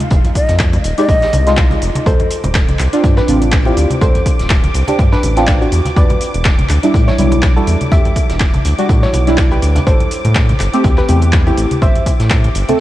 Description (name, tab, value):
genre	deep house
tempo	123 BPM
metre	4/4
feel	swing 56% on 16ths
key	D dorian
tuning	A4 = 440 Hz
part	deep house drum kit	drums	0.0-12.8 s	handclaps, hi-hat, shaker	-23 LUFS	equal	vintage 12-bit sampler grit, studio ambience
part	congas	percussion	0.0-12.8 s	none	-23 LUFS	equal	none
part	round analog bass	bass	0.1-12.6 s	D1 to A2	-15 LUFS	equal	sidechain pumping
part	electronic kick drum	drums	0.1-12.4 s	none	-13 LUFS	equal	vintage 12-bit sampler grit, studio ambience
part	vintage brush drum kit	drums	0.1-12.8 s	hi-hat, snare drum	-31 LUFS	equal	none
part	breathy jazz flute	melody	0.4-1.5 s	Eb5	-21 LUFS	left 1 dB	diffuse ambient delay
part	deep mellow chord stab	stabs	1.0-12.8 s	G3 to A4	-18 LUFS	right 1 dB	chorus, phaser, sidechain pumping, tape echo
part	soft round pluck	melody	2.1-12.1 s	D4 to E5	-21 LUFS	equal	chorus, diffuse ambient delay
part	soft string machine	texture	2.1-12.8 s	D6	-28 LUFS	equal	ensemble chorus, sidechain pumping
room	light reverb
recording	cassette tape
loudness	-10 LUFS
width	side -14 dB against mid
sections	0.0-12.8 A section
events	none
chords	0.0 Fm7; 2.1 Dm7; 5.7 Em7; 9.9 Am7